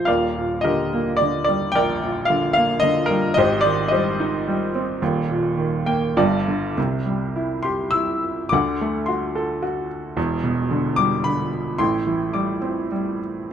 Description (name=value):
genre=classical, lyrical solo piano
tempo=96-114 BPM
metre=3/4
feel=rubato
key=Eb major, C lydian from 6.8 s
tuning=A4 = 440 Hz
part: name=clear baby grand piano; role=solo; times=0.0-13.5 s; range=Eb1 to E6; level=-19 LUFS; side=equal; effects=none
room=moderate studio reverb, RT60 0.7 s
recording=dark, warm production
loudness=-19 LUFS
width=side -8 dB against mid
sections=0.0-6.8 A section; 6.8-13.5 B section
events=grand piano fill 5.6-6.8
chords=0.1 Ebmaj7; 3.4 Abmaj7; 5.0 Eb6; 6.2 G5; 6.8 C; 8.5 D7; 10.2 Em7; 11.8 Am7